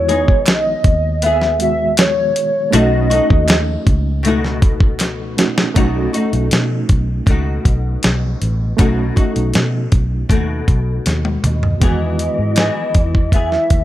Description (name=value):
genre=indie pop, bedroom pop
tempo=79 BPM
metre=4/4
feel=straight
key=unclear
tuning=A4 = 440 Hz
part: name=warbly nostalgic lead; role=melody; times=0.0-4.2, 11.5-13.8 s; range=C#5 to E5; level=-18 LUFS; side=equal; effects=tremolo, analog chorus, slapback echo
part: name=flamenco guitar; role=accompaniment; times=0.0-13.8 s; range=B2 to G#4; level=-22 LUFS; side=left 4 dB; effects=ensemble chorus, warbly pitch drift
part: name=reed electric piano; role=accompaniment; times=0.0-13.8 s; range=D#3 to F#4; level=-24 LUFS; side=right 5 dB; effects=fast tremolo
part: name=vintage muted fingered electric bass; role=bass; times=0.0-13.8 s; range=A1 to B2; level=-19 LUFS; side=equal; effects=none
part: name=dusty soul sampler-style drum kit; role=drums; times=0.1-13.8 s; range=hi-hat, kick drum, snare drum, toms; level=-15 LUFS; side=equal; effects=none
part: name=group handclap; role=percussion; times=0.5-5.2, 12.6-12.7 s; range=none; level=-29 LUFS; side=right 6 dB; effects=none
room=digital ambience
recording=none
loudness=-13 LUFS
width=side -14 dB against mid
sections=0.0-5.8 A section; 5.8-11.8 B section; 11.8-13.8 C section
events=drum fill 5.0-5.8, 11.1-11.8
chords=0.0 Emaj7; 2.7 B7; 11.8 Emaj7